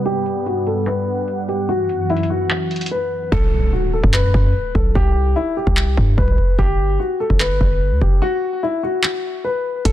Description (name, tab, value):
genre	hip hop, trap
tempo	147 BPM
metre	4/4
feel	half-time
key	unclear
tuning	A4 = 440 Hz
part	dark concert grand piano	melody	0.0-9.9 s	E4 to B4	-21 LUFS	left 2 dB	ping-pong delay
part	sweeping resonant pad	sustained chords	0.0-3.3 s	F#2 to F#5	-23 LUFS	right 1 dB	chorus
part	booming analog drum machine	drums	0.1-9.9 s	handclaps, hi-hat, kick drum	-18 LUFS	equal	none
part	hard-hitting 808-style bass	bass	3.3-9.9 s	F#1 to G2	-18 LUFS	equal	none
part	impact	sound effects	3.3-5.0 s	none	-25 LUFS	equal	none
room	little or no reverb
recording	dense, heavily limited modern master, low-pass filter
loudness	-16 LUFS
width	side -13 dB against mid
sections	0.0-3.3 A section; 3.3-9.9 B section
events	filter sweep 0.0-3.3; break 2.9-3.3, 8.2-9.9; hi-hats muted 3.3-9.9; impact 3.3-5.0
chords	0.1 Gmaj7; 1.7 F#7sus4; 3.3 B5; 5.0 C5; 6.6 Gmaj7; 8.2 N.C.